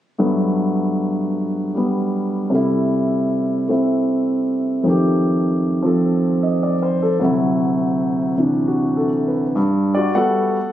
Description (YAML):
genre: solo jazz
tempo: 102 BPM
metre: 4/4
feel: swing 67% on 8ths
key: G major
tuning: A4 = 441 Hz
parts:
  - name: warm concert grand piano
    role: solo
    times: 0.2-10.7 s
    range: D2 to F#5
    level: -16 LUFS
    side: equal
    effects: none
room: moderate club reverb, RT60 0.5 s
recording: recorded on a phone in the room, studio reverb, compression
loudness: -16 LUFS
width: side -12 dB against mid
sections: 0.2-9.6 A section; 9.6-10.7 B section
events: none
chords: 0.2 Gmaj9; 2.5 C6; 4.9 F9; 7.2 D9; 9.6 Gmaj9